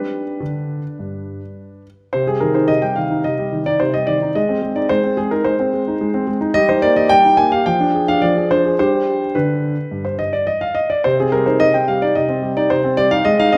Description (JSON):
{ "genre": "classical-period piano sonatina", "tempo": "108 BPM", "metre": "4/4", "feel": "straight", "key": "C minor", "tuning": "A4 = 441 Hz", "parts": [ { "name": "warm concert grand piano", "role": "solo", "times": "0.0-13.6 s", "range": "G2 to Ab5", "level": "-17 LUFS", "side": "equal", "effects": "none" } ], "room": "wet recital hall reverb, RT60 1.8 s", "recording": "none", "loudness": "-17 LUFS", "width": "mono", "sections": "0.0-2.1 A section; 2.1-13.6 B section", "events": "none", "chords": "0.0 G; 2.1 Cm; 4.3 Ab; 6.5 Eb/G; 7.7 Ddim/F; 8.8 G; 11.0 Cm", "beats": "0.41 0.99 1.56 | 2.13 2.69 3.25 3.80 | 4.35 4.90 5.45 6.00 | 6.55 7.10 7.65 8.21 | 8.78 9.34 9.91 10.48 | 11.05 11.61 12.16 12.71 | 13.26" }